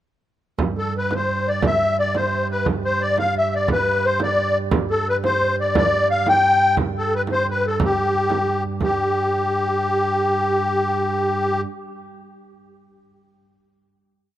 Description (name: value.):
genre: medieval dance.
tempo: 117 BPM (dotted quarters).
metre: 6/8.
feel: straight.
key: G mixolydian.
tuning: A4 = 440 Hz.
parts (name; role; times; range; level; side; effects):
chamber organ, principal chorus; drone; 0.6-11.6 s; G2; -27 LUFS; right 4 dB; none.
frame drum; percussion; 0.6-9.0 s; none; -24 LUFS; right 3 dB; none.
musette accordion; melody; 0.8-11.6 s; G4 to G5; -19 LUFS; left 2 dB; none.
room: light reverb, small room ambience.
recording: rough home demo mix.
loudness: -18 LUFS.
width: side -12 dB against mid.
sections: 0.6-8.8 A section; 8.8-10.8 final note.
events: none.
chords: none.